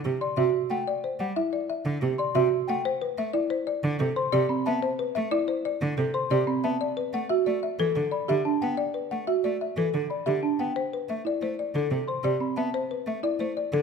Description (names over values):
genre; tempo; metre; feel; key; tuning
classical, minimalist pattern music; 182 BPM; 6/4; straight; A dorian; A4 = 440 Hz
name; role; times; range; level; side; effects
clear cello; accompaniment; 0.0-13.8 s; C3 to B3; -31 LUFS; right 2 dB; none
folk marimba with medium mallets; arpeggios; 0.0-13.4 s; C4 to A4; -28 LUFS; right 6 dB; none
folk marimba with medium mallets; melody; 0.2-13.8 s; A4 to F#5; -29 LUFS; left 7 dB; none
celesta; arpeggios; 0.2-12.8 s; G5 to C6; -34 LUFS; left 6 dB; none
room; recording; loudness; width
moderate recital hall reverb, RT60 1.5 s; none; -24 LUFS; side -6 dB against mid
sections
0.0-13.8 A section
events
none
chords
0.0 D9sus4; 2.8 Am9; 6.8 G69; 10.8 Amadd9